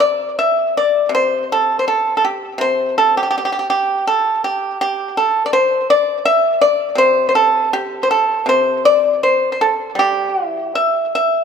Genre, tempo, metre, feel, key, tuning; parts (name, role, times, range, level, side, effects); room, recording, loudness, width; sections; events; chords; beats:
chinese traditional, Chinese solo plucked strings; 81 BPM; 4/4; rubato; C gong mode; A4 = 439 Hz
pipa; solo; 0.0-11.4 s; C3 to E5; -14 LUFS; equal
moderate recital hall reverb, RT60 1.5 s; -14 LUFS; side -6 dB against mid
0.0-11.4 A section
0.36 1.12 1.86 | 2.60 3.34 4.07 4.79 | 5.51 6.25 6.97 7.72 | 8.47 9.22 9.97 10.74